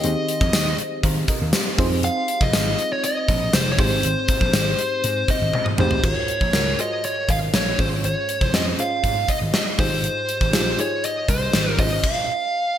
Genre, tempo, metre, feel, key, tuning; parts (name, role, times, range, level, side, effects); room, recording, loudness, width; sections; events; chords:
1980s-style pop; 120 BPM; 4/4; straight; Ab major; A4 = 440 Hz
fuzz lead guitar; melody; 0.0-12.8 s; C5 to F5; -23 LUFS; equal; distortion
mellow FM electric piano; accompaniment; 0.0-12.1 s; Ab2 to F5; -28 LUFS; equal; chorus
vintage slap bass; bass; 0.0-12.0 s; F1 to Eb3; -25 LUFS; equal
gated 80s drum kit; drums; 0.0-12.2 s; crash cymbal, hi-hat, kick drum, snare drum, tambourine, toms; -21 LUFS; equal; gated reverb
moderate lush hall reverb, RT60 2.1 s; bright 1980s-style digital production; -18 LUFS; side -10 dB against mid
0.0-6.0 A section; 6.0-12.8 B section
drum fill 5.5-6.0; stop 12.0-12.8
0.0 Abmaj7/Eb; 1.8 Fm7; 3.8 Abmaj7; 6.0 Gbmaj9/Ab; 7.8 Dbmaj7; 9.8 Fm9/Ab; 11.8 Dbmaj7/Ab